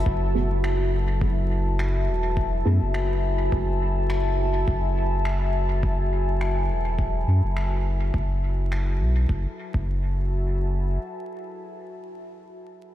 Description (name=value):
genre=ambient dub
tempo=104 BPM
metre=4/4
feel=swing 57% on 16ths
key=F# minor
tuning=A4 = 440 Hz
part: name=deep dark ambient pad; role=sustained chords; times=0.0-12.4 s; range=F#4 to B5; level=-29 LUFS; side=left 1 dB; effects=chorus, built-in reverb
part: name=soft dub sub bass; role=bass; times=0.0-11.0 s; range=E1 to F#2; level=-23 LUFS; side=equal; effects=none
part: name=electronic kick drum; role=drums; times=0.1-9.9 s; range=none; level=-26 LUFS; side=equal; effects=overdrive
part: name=filtered dub chord stab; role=stabs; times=0.3-2.8 s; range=A3 to G#4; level=-34 LUFS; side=right 2 dB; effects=phaser, ensemble chorus, dub echo
part: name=finger snaps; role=drums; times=0.6-8.8 s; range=none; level=-40 LUFS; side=equal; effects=dub echo
room=light reverb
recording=vinyl crackle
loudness=-22 LUFS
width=side -13 dB against mid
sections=0.1-9.3 A section; 9.3-11.6 B section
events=filter sweep on sub bass 0.1-9.3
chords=0.1 F#m11